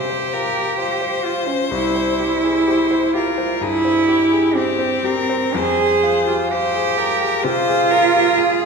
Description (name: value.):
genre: classical, slow romantic movement for piano trio.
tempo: 64 BPM.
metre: 4/4.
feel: rubato.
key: F minor.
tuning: A4 = 439 Hz.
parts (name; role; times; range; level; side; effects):
clear violin; melody; 0.0-8.7 s; G4 to C5; -23 LUFS; left 9 dB; none.
rich cello; second line; 0.0-8.7 s; C4 to Ab4; -17 LUFS; right 3 dB; none.
clear concert grand piano; accompaniment; 0.0-8.7 s; C2 to C5; -23 LUFS; left 3 dB; none.
room: wet recital hall reverb, RT60 1.7 s.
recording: none.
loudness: -15 LUFS.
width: side -5 dB against mid.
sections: 0.0-8.7 A section.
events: none.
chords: 0.0 F5; 1.7 C; 5.6 Fm.